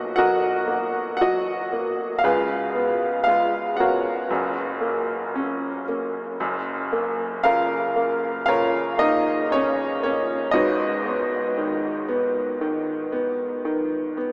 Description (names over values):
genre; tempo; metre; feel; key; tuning
acoustic folk-pop ballad; 58 BPM; 4/4; straight; F# major; A4 = 439 Hz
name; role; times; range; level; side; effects
bright upright piano; solo; 0.0-14.3 s; F#1 to F#5; -23 LUFS; equal; analog delay
room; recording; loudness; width
wet huge ambient reverb, RT60 8.7 s; dreamy mix soaked in reverb, small speaker sound; -23 LUFS; mono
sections
0.0-6.4 A section; 6.4-14.3 A section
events
none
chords
0.0 Bmaj7; 2.2 C#7; 4.3 F#; 6.4 F#maj7; 10.5 G#m7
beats
0.17 1.20 | 2.23 3.26 4.30 5.34 | 6.39 7.43 8.47 9.50 | 10.54 11.57 12.60 13.63